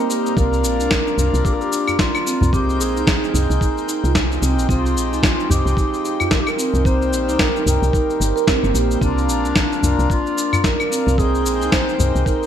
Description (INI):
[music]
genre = organic downtempo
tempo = 111 BPM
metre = 4/4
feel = swing 58% on 16ths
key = unclear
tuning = A4 = 440 Hz
[part]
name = pedal harmonium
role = accompaniment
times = 0.0-12.5 s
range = Eb3 to G5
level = -26 LUFS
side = left 5 dB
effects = sidechain pumping, ping-pong delay
[part]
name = marimba with soft mallets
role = arpeggios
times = 0.0-12.4 s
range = Bb3 to Bb4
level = -23 LUFS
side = right 3 dB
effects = ping-pong delay
[part]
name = electronic cabasa, snare drum and claves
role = drums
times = 0.1-12.5 s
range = none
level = -22 LUFS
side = equal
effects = gated reverb
[part]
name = dark clarinet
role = melody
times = 0.4-12.5 s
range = D4 to C5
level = -24 LUFS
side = right 1 dB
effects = ping-pong delay
[part]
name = woody FM bass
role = bass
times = 0.4-12.2 s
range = G1 to C2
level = -20 LUFS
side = equal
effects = sidechain pumping
[part]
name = electronic kick drum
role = drums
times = 0.4-12.4 s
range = none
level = -21 LUFS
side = equal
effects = none
[part]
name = udu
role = percussion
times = 1.2-12.1 s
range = none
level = -24 LUFS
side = left 1 dB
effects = none
[sound]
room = light reverb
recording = bright 1980s-style digital production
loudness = -16 LUFS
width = side -9 dB against mid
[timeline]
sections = 0.4-12.5 A section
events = none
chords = 0.4 Bb; 2.5 Abmaj7; 6.9 Cm7; 9.0 Bb; 11.2 Abmaj7